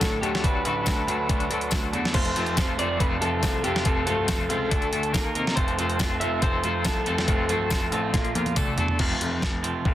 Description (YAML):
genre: indie rock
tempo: 140 BPM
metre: 4/4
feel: straight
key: unclear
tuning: A4 = 436 Hz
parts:
  - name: electric guitar through a small old amp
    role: melody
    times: 0.0-8.5 s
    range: G4 to E5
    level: -29 LUFS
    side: left 1 dB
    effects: spring reverb
  - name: cranked stack guitar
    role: riff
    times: 0.0-9.9 s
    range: F2 to Bb4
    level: -31 LUFS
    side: left 7 dB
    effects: overdrive, tremolo
  - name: cranked stack guitar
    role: riff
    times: 0.0-9.9 s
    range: F2 to Bb4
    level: -29 LUFS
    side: right 7 dB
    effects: overdrive, wide subtle chorus
  - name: bright baby grand piano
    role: bass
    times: 0.0-9.9 s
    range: C1 to C3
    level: -30 LUFS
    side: left 1 dB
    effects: none
  - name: detuned 8-bit digital drum machine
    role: drums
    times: 0.0-9.9 s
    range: crash cymbal, hi-hat, kick drum, snare drum, toms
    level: -25 LUFS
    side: equal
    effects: none
  - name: tambourine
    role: percussion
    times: 0.0-8.7 s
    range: none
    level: -38 LUFS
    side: left 7 dB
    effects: none
room: light reverb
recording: dense, heavily limited modern master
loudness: -22 LUFS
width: side -13 dB against mid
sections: 0.0-9.0 A section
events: drum fill 8.1-9.0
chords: 0.0 D6; 2.1 F; 4.7 D5; 5.1 Eb5; 5.6 F; 8.1 Bb5; 8.6 D5; 9.0 F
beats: 0.01 | 0.43 0.86 1.29 1.72 | 2.15 2.57 3.00 3.43 | 3.85 4.28 4.71 5.14 | 5.57 5.99 6.42 6.85 | 7.28 7.70 8.13 8.56 | 8.99 9.42 9.85